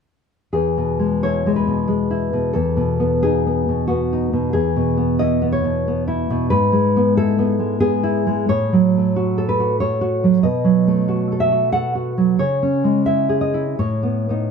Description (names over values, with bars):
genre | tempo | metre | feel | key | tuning
romantic piece for solo classical guitar | 91 BPM | 3/4 | uneven beats, rubato | E major | A4 = 440 Hz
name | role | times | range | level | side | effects
nylon-string guitar | solo | 0.5-14.5 s | E2 to F#5 | -16 LUFS | equal | none
room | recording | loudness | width
moderate recital hall reverb, RT60 1.5 s | close, detailed microphones | -16 LUFS | side -6 dB against mid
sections
0.5-14.5 A section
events
none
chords
0.5 E; 2.6 B7/E; 4.5 E; 6.5 E/G#; 8.5 F#m/A; 10.4 B7; 12.4 C#m; 13.8 B7/A